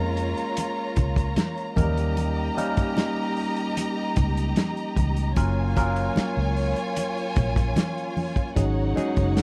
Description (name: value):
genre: lush 1970s-style soul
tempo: 75 BPM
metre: 4/4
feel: straight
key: unclear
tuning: A4 = 439 Hz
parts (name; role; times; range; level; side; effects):
- warm studio violin section; second line; 0.0-9.4 s; Eb4 to Bb5; -33 LUFS; equal; none
- barky tine electric piano; accompaniment; 0.0-9.4 s; Gb3 to Bb4; -31 LUFS; equal; overdrive, phaser
- vintage muted fingered electric bass; bass; 0.0-9.4 s; Gb1 to F2; -28 LUFS; equal; none
- vintage drum kit; drums; 0.2-9.4 s; hi-hat, kick drum, snare drum; -28 LUFS; equal; none
- congas; percussion; 0.6-9.4 s; none; -33 LUFS; equal; none
room: little or no reverb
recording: dry, close 1970s-style studio recording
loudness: -25 LUFS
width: mono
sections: 0.0-9.4 A section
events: none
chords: 0.0 Bbm7; 1.8 Eb7; 5.4 Gbmaj7; 8.6 Ab7sus4